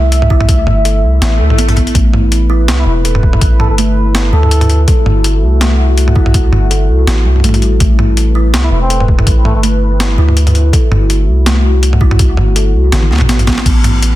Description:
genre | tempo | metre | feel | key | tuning
half-time drum and bass | 164 BPM | 4/4 | swing 55% on 16ths, half-time | A dorian | A4 = 440 Hz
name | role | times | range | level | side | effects
dark analog pad | sustained chords | 0.0-14.2 s | A3 to E5 | -19 LUFS | left 1 dB | chorus, phaser, sidechain pumping
kalimba | arpeggios | 0.0-13.6 s | G3 to A4 | -20 LUFS | right 2 dB | dub echo
long sustained 808-style bass | bass | 0.0-14.2 s | E1 to D2 | -11 LUFS | equal | none
boom bap sampler-style drum kit | drums | 0.1-14.1 s | crash cymbal, hi-hat, snare drum, toms | -16 LUFS | equal | overdrive
electronic kick drum | drums | 0.3-13.7 s | none | -11 LUFS | equal | overdrive
swell | sound effects | 1.3-1.9 s | none | -21 LUFS | equal | none
trumpet with bucket mute | melody | 2.8-4.8, 8.6-9.6 s | A3 to A4 | -22 LUFS | equal | ping-pong delay
room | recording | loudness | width
little or no reverb | dense, heavily limited modern master | -8 LUFS | side -15 dB against mid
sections
0.0-13.7 A section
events
drop 0.0-13.7; swell 1.3-2.0; drum fill 12.9-13.7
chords
0.0 Am

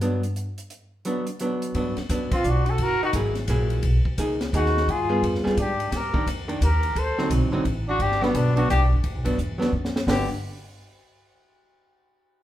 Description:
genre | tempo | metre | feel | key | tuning
jazz, small-group swing and bop | 173 BPM | 3/4 | swing 64% on 8ths | unclear | A4 = 440 Hz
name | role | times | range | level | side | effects
archtop guitar, miked and amplified | accompaniment | 0.0-10.3 s | D3 to G#4 | -26 LUFS | right 1 dB | none
upright bass | bass | 0.0-10.3 s | F#1 to Ab2 | -24 LUFS | equal | none
compact cocktail drum kit | drums | 0.0-10.2 s | hi-hat, kick drum, ride cymbal, snare drum | -31 LUFS | equal | none
warm trumpet | melody | 2.3-10.3 s | B3 to C5 | -26 LUFS | left 3 dB | none
growling tenor saxophone | second line | 2.3-10.3 s | D3 to A4 | -30 LUFS | right 2 dB | none
room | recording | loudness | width
wet club reverb, RT60 0.8 s | heard from further back in the room | -21 LUFS | side -13 dB against mid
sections
0.0-1.7 A section; 1.7-10.1 B section; 10.1-11.1 C section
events
upright bass solo 0.0-1.7; drum fill 9.7-10.1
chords
0.0 Gmaj7; 2.8 F#9; 3.8 Bmaj13; 4.9 G7b9; 5.9 Ebmaj9; 7.0 D7b9; 8.0 Gmaj7

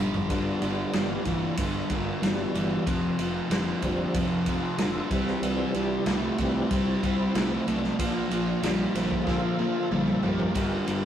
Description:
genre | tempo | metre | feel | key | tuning
classic rock | 94 BPM | 4/4 | straight | unclear | A4 = 440 Hz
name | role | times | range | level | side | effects
crunchy overdriven guitar | riff | 0.0-11.1 s | F2 to A3 | -29 LUFS | right 2 dB | spring reverb
sludgy distorted guitar | riff | 0.0-11.1 s | F2 to A3 | -32 LUFS | left 5 dB | overdrive
fuzz fingered electric bass | bass | 0.0-11.1 s | F1 to Bb2 | -34 LUFS | equal | overdrive
vintage drum kit | drums | 0.1-11.0 s | kick drum, ride cymbal, snare drum, toms | -30 LUFS | right 1 dB | none
tambourine | percussion | 0.1-0.2, 10.9-11.0 s | none | -49 LUFS | left 5 dB | none
tonewheel organ | sustained chords | 0.3-11.1 s | B2 to Bb4 | -33 LUFS | left 1 dB | overdrive, chorus vibrato, slow rotary speaker
room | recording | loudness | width
moderate stone room reverb, RT60 1.0 s | rough rehearsal-room recording | -24 LUFS | side -10 dB against mid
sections
0.3-11.1 A section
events
drum fill 0.0-0.3, 9.3-10.6; tonewheel organ solo 0.3-11.1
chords
0.3 G; 2.9 Fsus2; 5.1 C; 8.0 Bb

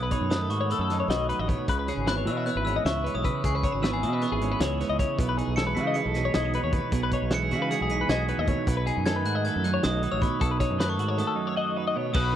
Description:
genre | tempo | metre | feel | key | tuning
math rock and midwest emo | 309 BPM (eighths) | 9/8 | straight | unclear | A4 = 440 Hz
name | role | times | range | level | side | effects
glockenspiel with hard plastic mallets | melody | 0.0-12.3 s | B5 to C#7 | -32 LUFS | right 1 dB | slapback echo
twelve-string electric guitar | accompaniment | 0.0-12.4 s | F#2 to F#4 | -30 LUFS | right 7 dB | none
twelve-string electric guitar | arpeggios | 0.0-12.4 s | G#4 to E5 | -30 LUFS | left 8 dB | spring reverb
growling fingered electric bass | bass | 0.0-12.4 s | G#1 to C#3 | -29 LUFS | equal | overdrive
loose indie drum kit | drums | 0.1-12.2 s | crash cymbal, hi-hat, kick drum, snare drum | -29 LUFS | equal | none
room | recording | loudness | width
studio reverb | dry, close 1970s-style studio recording | -24 LUFS | side -10 dB against mid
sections
0.0-12.2 A section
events
none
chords
0.0 B7; 1.7 C#m7; 5.2 Emaj9/B; 8.7 B7

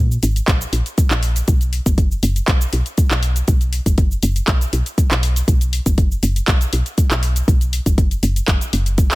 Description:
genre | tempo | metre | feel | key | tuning
afro house | 120 BPM | 4/4 | straight | unclear | A4 = 440 Hz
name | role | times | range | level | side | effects
woody FM bass | bass | 0.0-9.2 s | F#1 to Bb2 | -18 LUFS | equal | sidechain pumping
afro-pop drum kit | drums | 0.1-9.2 s | handclaps, hi-hat, shaker | -23 LUFS | equal | small room ambience
electronic kick drum | drums | 0.5-9.1 s | none | -16 LUFS | equal | small room ambience
room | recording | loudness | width
digital ambience | none | -15 LUFS | side -20 dB against mid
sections
0.0-9.2 A section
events
none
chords
none

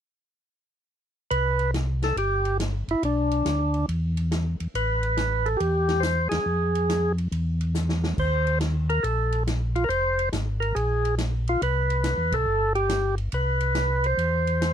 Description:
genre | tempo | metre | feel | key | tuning
soul jazz organ trio | 140 BPM | 4/4 | swing 66% on 8ths | C major | A4 = 439 Hz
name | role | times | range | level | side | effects
percussive tonewheel organ | melody | 1.3-14.7 s | D4 to C5 | -24 LUFS | equal | slow rotary speaker, overdrive
mellow tonewheel organ | bass | 1.3-14.7 s | F1 to F2 | -25 LUFS | equal | chorus vibrato, slow rotary speaker
vintage drum kit | drums | 1.3-14.7 s | crash cymbal, hi-hat, kick drum, ride cymbal, snare drum | -34 LUFS | equal | none
room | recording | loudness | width
light reverb | none | -22 LUFS | side -9 dB against mid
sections
1.3-14.7 A section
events
band accent 6.2, 12.3; drum fill 7.8-8.2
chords
1.3 C5; 3.0 Bm; 3.9 N.C.; 4.7 Asus2; 6.5 Fm; 7.3 N.C.; 8.2 Eb5; 9.9 Fm; 10.8 Fmadd11/Bb; 11.6 Cmaj7(no3); 14.2 C/E

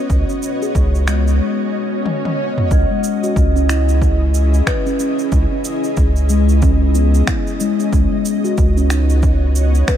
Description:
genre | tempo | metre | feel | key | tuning
organic downtempo | 92 BPM | 4/4 | swing 60% on 16ths | C# minor | A4 = 439 Hz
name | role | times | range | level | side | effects
ethereal airy pad | sustained chords | 0.0-10.0 s | B3 to D#5 | -24 LUFS | equal | ensemble chorus, built-in reverb, tremolo, sidechain pumping
round analog bass | bass | 0.1-9.8 s | C#2 | -14 LUFS | equal | sidechain pumping
electronic kick drum | drums | 0.1-10.0 s | none | -17 LUFS | equal | overdrive, studio ambience
organic electronic drum kit | drums | 0.1-10.0 s | finger snaps, shaker, toms | -25 LUFS | equal | studio ambience
steel tongue drum | arpeggios | 0.3-10.0 s | G#3 to B4 | -20 LUFS | left 3 dB | digital delay
swell | sound effects | 1.6-2.7 s | none | -27 LUFS | right 3 dB | none
bronze singing bowl | texture | 2.7-10.0 s | C#4 to D#5 | -28 LUFS | equal | none
room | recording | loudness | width
digital ambience | none | -13 LUFS | side -10 dB against mid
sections
0.0-2.7 A section; 2.7-10.0 B section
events
break 1.4-2.7; swell 1.6-2.7; drum fill 2.1-2.7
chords
0.0 B/C#; 2.7 C#m; 7.9 B/C#

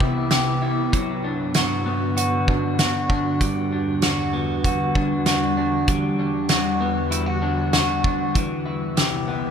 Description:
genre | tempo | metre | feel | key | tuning
dream pop | 97 BPM | 4/4 | straight | E minor | A4 = 438 Hz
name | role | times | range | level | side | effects
ethereal airy pad | sustained chords | 0.0-9.5 s | C2 to F#4 | -24 LUFS | equal | ensemble chorus, built-in reverb
electric guitar through a small old amp | arpeggios | 0.0-9.5 s | E3 to G4 | -23 LUFS | equal | lush chorus, digital delay
loose indie drum kit | drums | 0.0-9.1 s | hi-hat, kick drum, snare drum | -22 LUFS | right 1 dB | none
room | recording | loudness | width
moderate plate reverb, RT60 3.1 s | bright 1980s-style digital production | -19 LUFS | side -7 dB against mid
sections
0.0-9.5 A section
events
none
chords
0.0 Cmaj7; 0.9 Gmaj7; 3.4 Em9; 8.4 Cmaj7

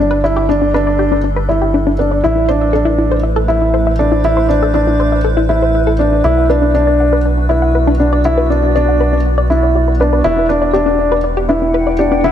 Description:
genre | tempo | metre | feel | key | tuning
piano and strings electronica | 120 BPM | 4/4 | straight | unclear | A4 = 438 Hz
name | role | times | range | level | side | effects
granular cloud pad | sustained chords | 0.0-12.3 s | G3 to G5 | -22 LUFS | equal | built-in reverb
wide unison pluck | arpeggios | 0.0-12.3 s | D4 to F#5 | -18 LUFS | left 3 dB | ping-pong delay
dark upright piano | riff | 0.0-12.3 s | D4 to E4 | -14 LUFS | equal | ping-pong delay
round analog bass | bass | 0.0-12.3 s | E1 to B1 | -16 LUFS | equal | none
room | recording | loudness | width
moderate lush hall reverb, RT60 2.5 s | none | -11 LUFS | side -9 dB against mid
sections
0.0-12.3 A section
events
fade-in on ambient pad 0.0-12.3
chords
0.0 G; 2.2 Am; 6.2 Bm; 10.2 Em7

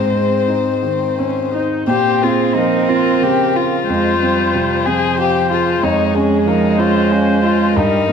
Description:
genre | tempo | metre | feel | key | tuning
neoclassical piano and strings | 61 BPM (dotted quarters) | 6/8 | uneven beats, rubato | unclear | A4 = 440 Hz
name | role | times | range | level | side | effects
dark violin | melody | 0.0-8.1 s | Db4 to C5 | -17 LUFS | left 7 dB | none
rich cello | second line | 0.0-8.1 s | F3 to C4 | -18 LUFS | right 6 dB | none
dark viola | accompaniment | 0.0-8.1 s | C4 to Db5 | -22 LUFS | equal | none
warm grand piano | accompaniment | 0.0-8.1 s | F2 to Ab4 | -20 LUFS | right 1 dB | none
room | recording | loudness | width
moderate scoring stage reverb, RT60 1.7 s | none | -13 LUFS | side -6 dB against mid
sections
0.0-1.9 A section; 1.9-8.1 B section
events
none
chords
0.0 Ab; 1.9 Bbmadd9; 3.9 Fm; 5.8 Db/F

